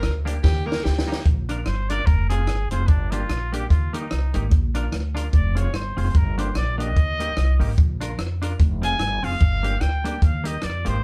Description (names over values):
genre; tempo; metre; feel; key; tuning
ska; 147 BPM; 4/4; swing 58% on 8ths; Bb mixolydian; A4 = 440 Hz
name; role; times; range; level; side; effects
bright alto saxophone; melody; 0.0-1.2 s; G4 to Bb4; -32 LUFS; equal; none
semi-hollow electric guitar; accompaniment; 0.0-11.0 s; Bb3 to Bb4; -34 LUFS; equal; slapback echo
upright bass; bass; 0.0-11.0 s; F1 to F2; -26 LUFS; equal; none
compact cocktail drum kit; drums; 0.0-10.9 s; hi-hat, kick drum, rim click, snare drum; -23 LUFS; equal; none
breathy trumpet; melody; 1.7-11.0 s; D4 to Ab5; -31 LUFS; equal; none
room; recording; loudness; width
moderate studio reverb, RT60 0.7 s; band playing live in one room; -22 LUFS; mono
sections
0.0-1.3 A section; 1.3-11.0 A section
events
alto saxophone solo 0.0-1.3; drum fill 0.4-1.3; trumpet solo 1.3-11.0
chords
0.4 Eb; 1.3 Bb; 2.1 Fm; 2.9 Gm; 3.7 Eb; 4.5 Bb; 5.3 Fm; 6.1 Gm; 7.0 Eb; 7.8 Bb; 8.6 Fm; 9.4 Gm; 10.2 Eb